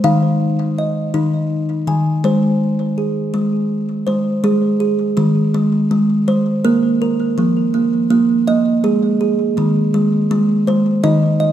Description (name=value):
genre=world meditative, meditative tuned percussion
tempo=55 BPM (dotted quarters)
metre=6/8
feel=straight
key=Ab major pentatonic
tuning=A4 = 439 Hz
part: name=kalimba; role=solo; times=0.0-11.5 s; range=Eb3 to Ab5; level=-14 LUFS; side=right 1 dB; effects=tape echo
room=wet scoring stage reverb, RT60 1.4 s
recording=none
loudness=-14 LUFS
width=side -11 dB against mid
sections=0.0-4.4 A section; 4.4-11.5 B section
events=none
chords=0.0 Ebsus24; 2.2 Ab; 6.6 Bb5; 8.8 Ab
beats=| 0.04 1.14 | 2.24 3.34 | 4.44 5.54 | 6.64 7.74 | 8.84 9.94 | 11.04